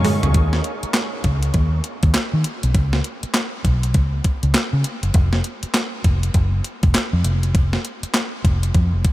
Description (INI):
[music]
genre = R&B, new jack swing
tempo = 100 BPM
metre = 4/4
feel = swing 62% on 16ths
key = unclear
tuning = A4 = 441 Hz
[part]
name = vintage muted fingered electric bass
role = bass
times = 0.0-9.0 s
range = F1 to D#3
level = -18 LUFS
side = equal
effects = none
[part]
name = crisp 8-bit digital drum machine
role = drums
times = 0.0-9.1 s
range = handclaps, hi-hat, kick drum, snare drum, toms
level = -20 LUFS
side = equal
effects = overdrive
[sound]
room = light reverb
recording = none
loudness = -17 LUFS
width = side -16 dB against mid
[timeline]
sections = 0.3-9.1 A section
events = drum fill 0.0-0.3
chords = none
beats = | 0.35 0.95 1.55 2.15 | 2.75 3.35 3.95 4.55 | 5.15 5.75 6.35 6.95 | 7.55 8.15 8.75